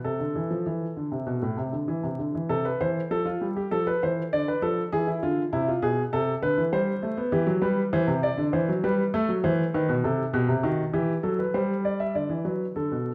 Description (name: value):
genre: classical, baroque-style two-part invention for grand piano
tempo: 99 BPM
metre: 4/4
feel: straight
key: A minor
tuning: A4 = 441 Hz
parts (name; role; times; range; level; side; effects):
- warm concert grand piano; solo; 0.0-13.1 s; A2 to E5; -26 LUFS; equal; none
room: wet recital hall reverb, RT60 1.4 s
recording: dark, warm production, vinyl crackle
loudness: -26 LUFS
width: mono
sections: 0.0-2.5 A section; 2.5-12.1 B section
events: none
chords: 0.0 Am/C; 3.7 Bm7b5; 4.9 E7; 6.1 Am/C; 7.3 Em; 8.5 F#m7b5/E; 9.7 B7; 10.9 Em; 12.1 D